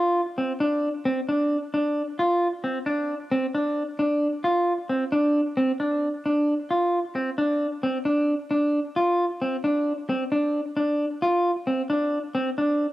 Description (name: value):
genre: progressive instrumental, progressive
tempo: 133 BPM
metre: 5/4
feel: straight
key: D minor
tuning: A4 = 441 Hz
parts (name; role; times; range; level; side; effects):
- clean electric guitar; solo; 0.0-12.9 s; C4 to F4; -22 LUFS; equal; cassette tape
room: wet booth ambience, RT60 0.3 s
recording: home recording on cassette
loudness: -22 LUFS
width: side -16 dB against mid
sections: 0.0-12.9 A section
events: none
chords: none